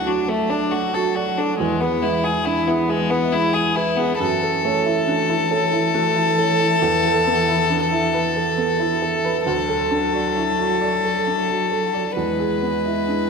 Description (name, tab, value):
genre	neoclassical piano and strings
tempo	46 BPM (dotted quarters)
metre	6/8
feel	rubato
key	unclear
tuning	A4 = 440 Hz
part	rich violin	melody	0.0-13.3 s	G#3 to B4	-20 LUFS	left 5 dB	none
part	dark cello	second line	0.0-13.3 s	E3 to G#3	-27 LUFS	right 4 dB	none
part	warm upright piano	accompaniment	0.0-13.3 s	D2 to D5	-23 LUFS	right 5 dB	none
part	marimba with medium mallets	arpeggios	0.1-13.2 s	D4 to B5	-28 LUFS	right 3 dB	none
room	wet concert hall reverb, RT60 1.9 s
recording	recorded in a church or concert hall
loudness	-17 LUFS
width	side -5 dB against mid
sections	0.0-13.3 A section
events	none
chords	0.0 D; 1.6 E; 4.2 F#m7; 6.8 Asus2/E; 9.5 D; 12.2 E